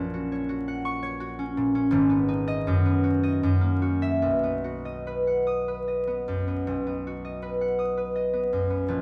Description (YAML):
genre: classical, solo harp piece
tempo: 72-86 BPM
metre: 3/4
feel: rubato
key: B major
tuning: A4 = 440 Hz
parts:
  - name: concert harp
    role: solo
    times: 0.0-9.0 s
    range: G#1 to D#6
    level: -26 LUFS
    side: equal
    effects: none
room: wet stone room reverb, RT60 1.1 s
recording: heard from further back in the room, vinyl crackle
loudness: -26 LUFS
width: mono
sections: 0.0-6.7 A section; 6.7-9.0 B section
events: none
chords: 0.0 F#/A#; 1.9 G#m; 2.7 B/F#; 3.4 F#7; 4.2 B